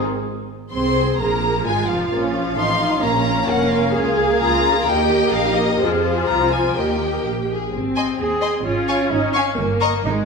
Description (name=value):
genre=quick classical-period movement for symphony orchestra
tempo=129 BPM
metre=2/4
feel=rubato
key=Ab major from 3.9 s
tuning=A4 = 439 Hz
part: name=rich chamber violin section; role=second line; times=0.0-9.9 s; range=Ab3 to Bb5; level=-24 LUFS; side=left 3 dB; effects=none
part: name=rich chamber viola section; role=accompaniment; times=0.0-10.2 s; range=Eb3 to Ab4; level=-22 LUFS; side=equal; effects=none
part: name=rich chamber double bass section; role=bass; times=0.0-10.2 s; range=F1 to F2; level=-25 LUFS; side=right 4 dB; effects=none
part: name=rich chamber violin section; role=melody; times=0.7-9.9 s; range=Eb5 to Db6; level=-23 LUFS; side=left 4 dB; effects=none
part: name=warm chamber cello section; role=bass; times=0.7-10.1 s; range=Db4 to Bb4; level=-24 LUFS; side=right 3 dB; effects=none
room=wet scoring stage reverb, RT60 1.6 s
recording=none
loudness=-16 LUFS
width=side -4 dB against mid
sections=0.3-7.7 A section; 7.7-10.2 B section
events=none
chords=0.3 N.C.; 0.7 Ab/C; 1.2 Fmadd11; 2.1 Bbm; 2.6 F7/A; 3.0 Bbm; 3.9 Bbm7/Db; 4.9 Eb; 5.8 Fm; 6.8 Eb; 7.7 Ab; 8.7 Db/Ab; 9.6 Eb7/G